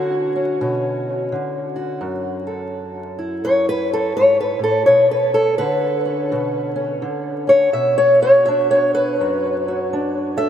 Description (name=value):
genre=acoustic country blues, solo or duo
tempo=84 BPM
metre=4/4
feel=swing 62% on 8ths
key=unclear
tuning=A4 = 442 Hz
part: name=fingerpicked old ladder-braced acoustic guitar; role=solo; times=0.0-10.5 s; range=F#2 to E5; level=-16 LUFS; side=equal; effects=diffuse ambient delay
room=wet huge ambient reverb, RT60 7.1 s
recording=dreamy mix soaked in reverb, vinyl crackle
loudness=-16 LUFS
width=side -9 dB against mid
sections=0.0-10.5 A section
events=steel-string acoustic guitar solo 0.0-10.5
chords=0.0 Bmadd9; 2.0 F#m9; 4.9 Bmadd9